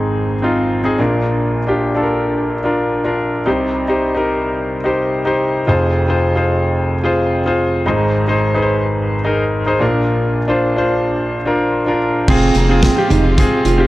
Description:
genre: piano-driven pop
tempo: 109 BPM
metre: 4/4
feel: straight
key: unclear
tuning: A4 = 440 Hz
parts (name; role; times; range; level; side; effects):
- clear concert grand piano; accompaniment; 0.0-13.9 s; F1 to C5; -14 LUFS; equal; none
- rich studio string section; sustained chords; 12.3-13.9 s; C3 to F4; -25 LUFS; right 2 dB; none
- fingerpicked steel-string acoustic guitar; riff; 12.3-13.8 s; Bb3 to F4; -20 LUFS; right 6 dB; none
- round analog bass; bass; 12.3-13.9 s; F1; -16 LUFS; equal; none
- modern studio drum kit; drums; 12.3-13.8 s; crash cymbal, hi-hat, kick drum, snare drum, toms; -16 LUFS; equal; none
room: light reverb, small room ambience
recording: worn, warbling old tape, cassette tape, warbly pitch drift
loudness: -14 LUFS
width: side -17 dB against mid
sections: 0.0-12.3 A section; 12.3-13.9 B section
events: none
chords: 0.0 Ab; 1.0 Bb; 3.5 Cm; 5.7 Fm; 7.9 Ab; 9.8 Bb; 12.3 Fm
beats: 0.17 0.72 | 1.27 1.82 2.37 2.92 | 3.47 4.02 4.57 5.12 | 5.67 6.22 6.77 7.33 | 7.88 8.43 8.98 9.53 | 10.08 10.63 11.18 11.73 | 12.28 12.83 13.38

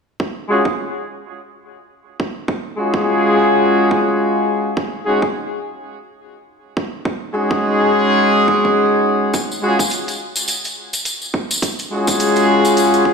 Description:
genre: glitch hop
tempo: 105 BPM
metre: 4/4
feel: swing 59% on 16ths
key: unclear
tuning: A4 = 440 Hz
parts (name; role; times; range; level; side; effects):
- electronic kick drum; drums; 0.2-13.1 s; none; -22 LUFS; right 2 dB; overdrive, high-pass filter on kick, high-pass filter on room
- mellow horn section; stabs; 0.5-13.1 s; Ab3 to Ab4; -14 LUFS; left 1 dB; vintage 12-bit sampler grit, sidechain pumping, low-pass filter, ping-pong delay
- electronic hi-hat; drums; 9.3-13.0 s; none; -28 LUFS; right 3 dB; overdrive, low-pass filter on hats, low-pass filter on room
- tambourine; percussion; 9.3-13.0 s; none; -22 LUFS; left 1 dB; none
room: moderate lush hall reverb, RT60 1.8 s, studio ambience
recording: played on a big sound system in a bare room, stone room reverb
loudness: -15 LUFS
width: side -5 dB against mid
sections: 0.2-13.1 A section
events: none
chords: 0.2 Dbadd11; 4.8 Ab7sus4; 9.3 Dbadd11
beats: | 0.20 0.77 1.34 1.92 | 2.49 3.06 3.63 4.20 | 4.77 5.34 5.92 6.49 | 7.06 7.63 8.20 8.77 | 9.34 9.91 10.49 11.06 | 11.63 12.20 12.77

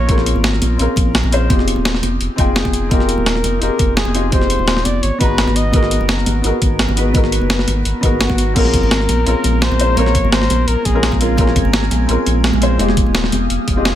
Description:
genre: liquid drum and bass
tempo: 170 BPM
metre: 4/4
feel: straight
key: Bb dorian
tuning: A4 = 437 Hz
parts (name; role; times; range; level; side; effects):
- mellow flugelhorn; melody; 0.0-0.2, 2.6-11.5, 13.9-14.0 s; F4 to Eb5; -22 LUFS; equal; ping-pong delay
- felt-muted upright piano; accompaniment; 0.0-14.0 s; Bb3 to Bb5; -20 LUFS; left 1 dB; dub echo
- saturated sub bass; bass; 0.0-13.9 s; Eb1 to Bb1; -18 LUFS; equal; none
- breakbeat sampler-style drum kit; drums; 0.1-13.9 s; crash cymbal, hi-hat, snare drum; -19 LUFS; equal; none
- electronic kick drum; drums; 0.1-13.8 s; none; -17 LUFS; equal; overdrive
- congas; percussion; 0.1-13.7 s; none; -23 LUFS; equal; none
- glassy FM pad; sustained chords; 9.0-14.0 s; Ab3 to Eb6; -23 LUFS; right 2 dB; ensemble chorus, built-in reverb
room: light reverb, digital ambience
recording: none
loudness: -13 LUFS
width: side -11 dB against mid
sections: 0.0-8.6 A section; 8.6-14.0 A section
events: drop 0.0-8.6, 8.6-14.0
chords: 0.0 Bbm7; 1.5 Fm7; 5.0 Abm7; 8.6 Bbm7; 12.8 Fm7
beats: | 0.09 0.44 0.79 1.15 | 1.50 1.85 2.21 2.56 | 2.91 3.27 3.62 3.97 | 4.32 4.68 5.03 5.38 | 5.74 6.09 6.44 6.79 | 7.15 7.50 7.85 8.21 | 8.56 8.91 9.27 9.62 | 9.97 10.32 10.68 11.03 | 11.38 11.74 12.09 12.44 | 12.79 13.15 13.50 13.85

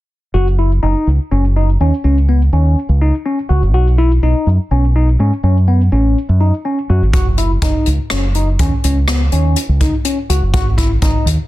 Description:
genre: progressive instrumental, band music in an uneven meter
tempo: 124 BPM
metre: 7/4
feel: straight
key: unclear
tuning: A4 = 440 Hz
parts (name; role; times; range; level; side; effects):
- overdriven tine electric piano; arpeggios; 0.3-11.3 s; B3 to F#4; -19 LUFS; left 2 dB; phaser
- deep dub fingered electric bass; bass; 0.3-11.4 s; F#1 to G#2; -12 LUFS; equal; none
- jazz brush drum kit; drums; 7.1-11.4 s; hi-hat, kick drum, rim click; -16 LUFS; equal; none
room: little or no reverb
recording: dense, heavily limited modern master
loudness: -12 LUFS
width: side -16 dB against mid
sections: 0.3-11.5 A section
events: none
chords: 0.3 F#5; 3.7 B; 7.1 F#5; 10.5 G#7(no3)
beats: | 0.34 0.82 1.31 1.79 2.28 2.77 3.25 | 3.74 4.22 4.71 5.19 5.68 6.17 6.65 | 7.14 7.62 8.11 8.59 9.08 9.57 10.05 | 10.54 11.02

